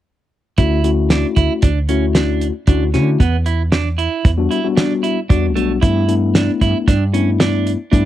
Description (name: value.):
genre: progressive instrumental, band music in an uneven meter.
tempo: 114 BPM.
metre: 5/4.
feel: straight.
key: D major.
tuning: A4 = 439 Hz.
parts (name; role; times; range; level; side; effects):
mellow tine electric piano; accompaniment; 0.6-8.1 s; G3 to F#4; -19 LUFS; left 7 dB; medium stereo tremolo, cassette tape, plate reverb.
clean electric guitar; arpeggios; 0.6-8.1 s; A3 to E4; -21 LUFS; right 8 dB; cassette tape.
woody fretless electric bass; bass; 0.6-8.1 s; B1 to D3; -17 LUFS; equal; none.
damped 70s drum kit; drums; 0.6-8.1 s; hi-hat, kick drum, snare drum; -15 LUFS; right 1 dB; cassette tape.
room: light reverb.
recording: home recording on cassette.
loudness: -14 LUFS.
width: side -13 dB against mid.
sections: 0.6-8.1 A section.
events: none.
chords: 0.6 Dmaj7; 3.2 Em7; 5.8 G6.